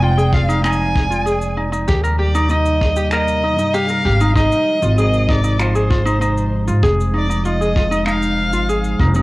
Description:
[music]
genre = folktronica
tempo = 97 BPM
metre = 4/4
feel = straight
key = F dorian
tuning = A4 = 440 Hz
[part]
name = rich violin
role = melody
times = 0.0-9.0 s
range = C5 to Ab5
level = -21 LUFS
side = equal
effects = cassette tape
[part]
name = warbly tape-like pad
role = sustained chords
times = 0.0-9.2 s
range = C3 to D5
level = -24 LUFS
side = equal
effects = chorus, built-in reverb, cassette tape
[part]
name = ukulele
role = arpeggios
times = 0.0-9.2 s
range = Eb4 to Bb4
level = -20 LUFS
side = equal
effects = vintage 12-bit sampler grit, cassette tape
[part]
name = upright bass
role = bass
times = 0.0-9.2 s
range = F1 to Ab2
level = -18 LUFS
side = equal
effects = tube saturation
[part]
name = cabasa and finger snaps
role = drums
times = 0.2-9.2 s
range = none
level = -30 LUFS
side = left 1 dB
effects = cassette tape
[part]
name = kick drum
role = drums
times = 0.3-9.1 s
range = none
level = -20 LUFS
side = equal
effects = cassette tape
[sound]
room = moderate spring reverb, RT60 1.7 s, small room ambience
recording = home recording on cassette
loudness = -14 LUFS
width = side -20 dB against mid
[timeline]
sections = 0.0-9.2 A section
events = none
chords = 0.0 Fm7; 1.9 Eb6; 4.4 Ab6; 6.8 Fm7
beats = 0.03 0.65 1.27 | 1.89 2.51 3.12 3.74 | 4.36 4.98 5.60 6.22 | 6.84 7.46 8.07 8.69

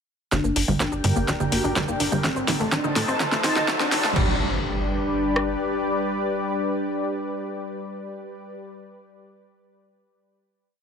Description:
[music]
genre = melodic techno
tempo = 125 BPM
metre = 4/4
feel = straight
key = unclear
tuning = A4 = 440 Hz
[part]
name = expressive portamento lead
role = melody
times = 0.3-8.5 s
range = C4 to F#4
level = -29 LUFS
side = left 1 dB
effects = lush chorus, digital delay
[part]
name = lush unison pad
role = sustained chords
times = 0.9-8.5 s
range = G3 to A5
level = -28 LUFS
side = left 1 dB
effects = chorus, sidechain pumping
[part]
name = analog pluck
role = arpeggios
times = 0.3-4.4 s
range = G3 to Eb4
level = -28 LUFS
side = left 1 dB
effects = chorus, sidechain pumping, ping-pong delay
[part]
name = tight sequencer bass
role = bass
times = 0.3-5.6 s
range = D1 to A2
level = -29 LUFS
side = equal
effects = sidechain pumping
[part]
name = deep house drum kit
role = drums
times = 0.3-4.3 s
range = congas, crash cymbal, hi-hat, shaker, snare drum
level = -25 LUFS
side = right 1 dB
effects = overdrive
[part]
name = punchy analog drum machine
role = drums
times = 0.3-5.5 s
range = kick drum, rim click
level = -26 LUFS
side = equal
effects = high-pass filter on kick, high-pass filter on snare
[part]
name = riser and impact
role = sound effects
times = 1.6-8.6 s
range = none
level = -30 LUFS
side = right 1 dB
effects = none
[sound]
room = light reverb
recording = high-pass filter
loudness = -21 LUFS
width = side -6 dB against mid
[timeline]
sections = 0.3-4.2 build; 4.2-8.0 final chord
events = build-up 0.3-4.2; drum fill 0.3-4.2; filter sweep on synth arpeggio sound 0.3-4.2; filter sweep on analog synth lead 0.3-4.2; riser 1.6-4.2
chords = 0.3 Gm; 2.2 Adim; 4.2 G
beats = | 0.32 0.80 1.28 1.76 | 2.24 2.72 3.20 3.68 | 4.16 4.64 5.12 5.60 | 6.08 6.56 7.04 7.52

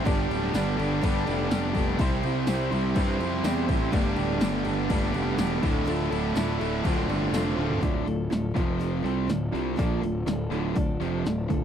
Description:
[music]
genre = classic rock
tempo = 123 BPM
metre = 4/4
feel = straight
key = D dorian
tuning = A4 = 440 Hz
[part]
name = picked old ladder-braced acoustic guitar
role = accompaniment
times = 0.0-11.6 s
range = G2 to C5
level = -34 LUFS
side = left 2 dB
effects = none
[part]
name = overdriven tonewheel organ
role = sustained chords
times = 0.0-7.8 s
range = B3 to C5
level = -39 LUFS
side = left 1 dB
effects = none
[part]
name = overdriven electric guitar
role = riff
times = 0.0-11.6 s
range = D2 to C5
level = -30 LUFS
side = right 11 dB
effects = none
[part]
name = tight distorted guitar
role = riff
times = 0.0-11.6 s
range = D2 to C5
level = -33 LUFS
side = left 12 dB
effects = distortion
[part]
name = tight distorted guitar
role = riff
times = 0.0-7.8 s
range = D2 to C4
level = -33 LUFS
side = equal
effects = distortion
[part]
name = fuzz picked electric bass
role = bass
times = 0.0-11.6 s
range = D1 to G2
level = -30 LUFS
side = left 1 dB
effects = overdrive
[part]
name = punchy analog drum machine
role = drums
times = 0.1-11.6 s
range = crash cymbal, hi-hat, kick drum, snare drum, toms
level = -28 LUFS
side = left 1 dB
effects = none
[part]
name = tambourine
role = percussion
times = 0.5-7.4 s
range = none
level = -47 LUFS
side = right 16 dB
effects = none
[sound]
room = little or no reverb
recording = dry, close 1970s-style studio recording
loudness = -24 LUFS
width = side -8 dB against mid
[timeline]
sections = 0.0-7.8 A section; 7.8-11.6 B section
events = drum fill 7.6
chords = 0.0 Gadd9; 2.0 C; 3.9 Gadd9; 5.6 Dmadd9; 6.8 Dm7; 7.8 Dm; 8.6 F5; 9.0 Dm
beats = | 0.05 0.53 1.02 1.50 | 1.99 2.47 2.96 3.44 | 3.92 4.41 4.90 5.38 | 5.87 6.35 6.84 7.33 | 7.82 8.31 8.80 9.29 | 9.78 10.27 10.76 11.25

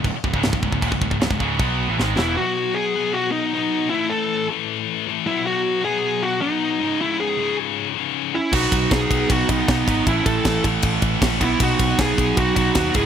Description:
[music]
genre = heavy metal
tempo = 156 BPM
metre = 4/4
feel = straight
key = unclear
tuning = A4 = 440 Hz
[part]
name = scooped high-gain guitar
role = riff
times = 0.0-13.1 s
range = C#2 to B3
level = -24 LUFS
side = left 15 dB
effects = distortion
[part]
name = scooped high-gain guitar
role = riff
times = 0.0-2.4, 8.5-13.1 s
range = C#2 to B3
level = -24 LUFS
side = right 14 dB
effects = distortion
[part]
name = picked electric bass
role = bass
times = 0.0-2.4, 8.5-13.1 s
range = C#1 to D#2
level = -25 LUFS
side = equal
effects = none
[part]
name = tight metal drum kit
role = drums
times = 0.0-2.3, 8.5-13.0 s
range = crash cymbal, kick drum, ride cymbal, snare drum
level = -22 LUFS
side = equal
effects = none
[part]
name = high-gain lead guitar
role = melody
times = 2.2-13.1 s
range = D#4 to A4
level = -22 LUFS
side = equal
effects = distortion
[part]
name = high-gain lead guitar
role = second line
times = 8.3-13.1 s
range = B3 to E4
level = -26 LUFS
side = right 4 dB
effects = distortion
[sound]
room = little or no reverb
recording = none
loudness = -18 LUFS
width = side -8 dB against mid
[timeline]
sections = 0.0-2.4 A section; 2.4-13.1 B section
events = drum fill 2.0-2.4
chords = 0.0 C#m; 2.4 B; 3.9 A5; 5.3 B; 6.8 C#5; 8.5 B; 10.1 A5; 11.4 B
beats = 0.05 0.43 | 0.82 1.21 1.60 1.98 | 2.37 2.76 3.14 3.53 | 3.92 4.30 4.69 5.07 | 5.46 5.84 6.22 6.61 | 7.00 7.38 7.76 8.15 | 8.53 8.92 9.30 9.69 | 10.07 10.46 10.84 11.22 | 11.61 11.99 12.38 12.76

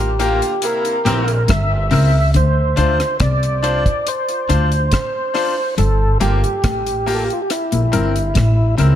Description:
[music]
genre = roots reggae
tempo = 70 BPM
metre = 4/4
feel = straight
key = D minor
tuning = A4 = 440 Hz
[part]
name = mellow tonewheel organ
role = melody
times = 0.0-8.8 s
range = E4 to E5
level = -20 LUFS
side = equal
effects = overdrive, chorus vibrato, slow rotary speaker, tape echo
[part]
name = warm horn section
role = second line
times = 0.0-1.4 s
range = C3 to Bb4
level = -25 LUFS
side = right 2 dB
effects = tube saturation, tape echo
[part]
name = clean electric guitar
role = riff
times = 0.0-9.0 s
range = G2 to D3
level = -22 LUFS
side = left 3 dB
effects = spring reverb
[part]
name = upright bass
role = bass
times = 0.0-9.0 s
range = G1 to D2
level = -17 LUFS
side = equal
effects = none
[part]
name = bright baby grand piano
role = stabs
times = 0.2-9.0 s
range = Bb3 to C5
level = -24 LUFS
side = left 4 dB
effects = none
[part]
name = deep reggae drum kit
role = drums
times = 0.2-9.0 s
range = hi-hat, kick drum, rim click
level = -21 LUFS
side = equal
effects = tape echo
[sound]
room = light reverb, small room ambience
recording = none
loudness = -14 LUFS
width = side -11 dB against mid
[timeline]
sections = 0.0-9.0 A section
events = none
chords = 0.0 Gm7; 0.6 C7; 2.3 Dm7; 5.8 Gm7; 7.5 C7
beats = 0.63 1.49 | 2.35 3.21 4.06 4.92 | 5.78 6.64 7.50 8.36

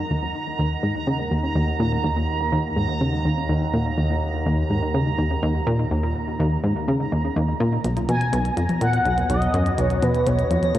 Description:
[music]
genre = ambient, sequencer-driven space music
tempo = 124 BPM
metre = 4/4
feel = straight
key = Eb minor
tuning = A4 = 440 Hz
[part]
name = sweeping resonant pad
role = sustained chords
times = 0.0-10.8 s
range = B3 to Gb5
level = -33 LUFS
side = left 1 dB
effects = chorus
[part]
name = plucky analog bass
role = riff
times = 0.0-10.8 s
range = B1 to Db3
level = -22 LUFS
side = equal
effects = analog delay
[part]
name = analog drone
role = bass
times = 0.9-10.8 s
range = Eb2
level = -28 LUFS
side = equal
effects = chorus
[part]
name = bubbling stepped-filter texture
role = texture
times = 0.0-10.8 s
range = Bb5 to Bb6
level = -30 LUFS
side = right 6 dB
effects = chorus, built-in reverb
[part]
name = minimal click drum kit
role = percussion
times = 7.8-10.8 s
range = hi-hat, toms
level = -30 LUFS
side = left 1 dB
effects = none
[part]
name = expressive synth lead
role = melody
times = 8.1-10.8 s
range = B4 to Ab5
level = -23 LUFS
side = equal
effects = ensemble chorus, analog delay
[sound]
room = moderate huge ambient reverb, RT60 8.1 s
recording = worn, warbling old tape, cassette tape, warbly pitch drift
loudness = -20 LUFS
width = side -13 dB against mid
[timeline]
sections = 0.0-10.8 A section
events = fade-in on analog synth pad 0.0-10.8; filter sweep on analog synth bass 0.0-10.8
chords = 0.0 Ebm7; 7.8 B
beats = | 0.10 0.59 1.07 1.55 | 2.04 2.52 3.01 3.49 | 3.98 4.46 4.94 5.43 | 5.91 6.39 6.88 7.36 | 7.84 8.33 8.81 9.30 | 9.78 10.27 10.75

